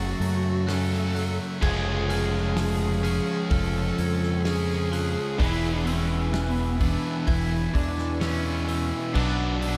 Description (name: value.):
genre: post-rock.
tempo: 64 BPM.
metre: 4/4.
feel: straight.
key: unclear.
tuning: A4 = 440 Hz.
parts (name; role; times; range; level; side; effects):
overdriven slide guitar; melody; 0.0-9.8 s; C#4 to A4; -34 LUFS; equal; diffuse ambient delay.
rich studio string section; sustained chords; 0.0-9.8 s; A3 to C#6; -45 LUFS; equal; none.
glockenspiel with hard plastic mallets; arpeggios; 0.0-9.8 s; E6 to A6; -42 LUFS; equal; diffuse ambient delay.
twangy electric guitar; arpeggios; 0.0-9.8 s; E2 to C#4; -39 LUFS; equal; none.
overdriven semi-hollow guitar; riff; 0.0-9.8 s; B2 to G#4; -34 LUFS; equal; none.
sludgy distorted guitar; riff; 0.0-9.8 s; E2 to C#4; -34 LUFS; equal; overdrive.
growling fingered electric bass; bass; 0.0-9.8 s; E1 to F#2; -29 LUFS; equal; overdrive.
loose indie drum kit; drums; 0.2-9.8 s; crash cymbal, hi-hat, kick drum, snare drum; -34 LUFS; equal; none.
room: moderate cathedral reverb, RT60 5.1 s.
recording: dreamy mix soaked in reverb.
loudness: -25 LUFS.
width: mono.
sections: 0.0-9.8 A section.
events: none.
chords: 0.0 F#m; 1.6 C#/E#; 5.4 E; 9.2 Bm.